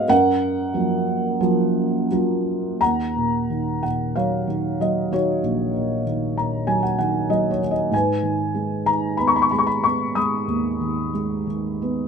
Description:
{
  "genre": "classical, lyrical solo piano",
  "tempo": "82-98 BPM",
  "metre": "4/4",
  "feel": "rubato",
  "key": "Eb minor",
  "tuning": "A4 = 443 Hz",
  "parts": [
    { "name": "felt-muted upright piano", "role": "solo", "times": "0.0-12.1 s", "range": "Bb1 to Eb6", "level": "-19 LUFS", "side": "equal", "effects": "none" }
  ],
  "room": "light reverb",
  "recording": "close, detailed microphones",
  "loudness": "-19 LUFS",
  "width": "side -6 dB against mid",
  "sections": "0.0-2.8 A section; 2.8-12.1 B section",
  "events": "felt piano fill 6.1-7.9",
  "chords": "0.1 F#maj7; 2.8 Ebm7; 7.9 Abm"
}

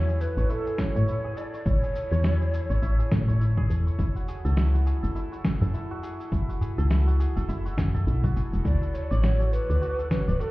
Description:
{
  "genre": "organic downtempo",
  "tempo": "103 BPM",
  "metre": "4/4",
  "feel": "swing 58% on 16ths",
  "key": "F# minor",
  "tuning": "A4 = 440 Hz",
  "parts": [
    { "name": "breathy ney", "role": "melody", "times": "0.0-3.4, 8.7-10.5 s", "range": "A4 to D5", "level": "-32 LUFS", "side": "right 1 dB", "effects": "ping-pong delay" },
    { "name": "santur", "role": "arpeggios", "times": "0.0-10.5 s", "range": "E4 to F#5", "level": "-36 LUFS", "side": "right 1 dB", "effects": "low-pass filter, tape echo" },
    { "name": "woody FM bass", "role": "bass", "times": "0.0-10.4 s", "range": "D1 to A2", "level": "-23 LUFS", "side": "equal", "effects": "none" },
    { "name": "electronic shaker and snare drum", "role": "drums", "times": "0.1-10.5 s", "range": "none", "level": "-33 LUFS", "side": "right 1 dB", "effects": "none" },
    { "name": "electronic kick drum", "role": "drums", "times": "0.8-10.2 s", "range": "none", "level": "-29 LUFS", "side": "equal", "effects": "overdrive" },
    { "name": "udu", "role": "percussion", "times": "1.0-10.4 s", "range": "none", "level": "-31 LUFS", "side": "right 1 dB", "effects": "none" }
  ],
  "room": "little or no reverb",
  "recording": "heard muffled through a wall, club reverb, EQ",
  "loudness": "-23 LUFS",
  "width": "side -19 dB against mid",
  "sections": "0.0-10.5 A section",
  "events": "none",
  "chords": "0.0 Amaj7; 4.0 F#m9; 8.7 Dmaj7"
}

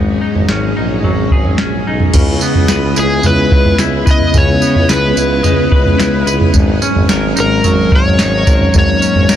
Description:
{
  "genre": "dream pop",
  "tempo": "109 BPM",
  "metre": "4/4",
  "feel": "straight",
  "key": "C# dorian",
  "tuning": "A4 = 440 Hz",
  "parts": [
    { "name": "string machine, violins", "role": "sustained chords", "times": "0.0-9.4 s", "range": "C#3 to D#5", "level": "-17 LUFS", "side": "equal", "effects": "ensemble chorus" },
    { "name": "semi-hollow electric guitar", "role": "arpeggios", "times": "0.0-9.4 s", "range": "G#2 to B4", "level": "-18 LUFS", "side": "left 3 dB", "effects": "lush chorus, tape echo" },
    { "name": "warm tuba", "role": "bass", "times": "0.0-9.4 s", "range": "G#1 to C#2", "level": "-18 LUFS", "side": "equal", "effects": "none" },
    { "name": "soft vintage rhythm box", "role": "drums", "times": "0.4-9.4 s", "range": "crash cymbal, kick drum, snare drum, tambourine, toms", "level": "-13 LUFS", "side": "right 1 dB", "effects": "none" },
    { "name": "overdriven slide guitar", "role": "melody", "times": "3.0-9.4 s", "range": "G#4 to D#5", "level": "-16 LUFS", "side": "left 1 dB", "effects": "tape echo" }
  ],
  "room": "light reverb, digital ambience",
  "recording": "dense, heavily limited modern master",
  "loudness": "-10 LUFS",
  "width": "side -10 dB against mid",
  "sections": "0.0-2.1 A section; 2.1-9.4 B section",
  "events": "none",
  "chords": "0.0 G#7sus4; 2.1 C#m7; 6.5 G#9sus4"
}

